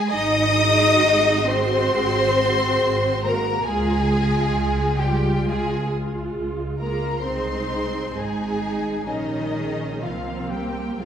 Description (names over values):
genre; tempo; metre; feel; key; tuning
classical, slow romantic movement for string orchestra; 66 BPM; 4/4; uneven beats, rubato; unclear; A4 = 441 Hz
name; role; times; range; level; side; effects
warm symphonic violin section; melody; 0.0-11.1 s; Eb5 to Eb6; -26 LUFS; left 3 dB; none
warm studio violin section; second line; 0.0-11.1 s; Eb4 to Eb5; -24 LUFS; left 1 dB; none
rich studio cello section; bass; 0.0-11.1 s; Eb3 to Eb4; -26 LUFS; right 2 dB; none
dark studio double bass section; bass; 0.1-11.1 s; Ab1 to F2; -27 LUFS; right 2 dB; none
dark studio viola section; accompaniment; 0.6-11.1 s; G3 to Gb4; -27 LUFS; right 2 dB; none
room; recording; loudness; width
wet scoring stage reverb, RT60 1.9 s; recorded in a church or concert hall; -19 LUFS; side -8 dB against mid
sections
0.0-11.1 A section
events
none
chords
0.1 Ab7; 3.7 Db; 7.3 Ab/C; 9.1 Gdim/Bb; 10.0 C5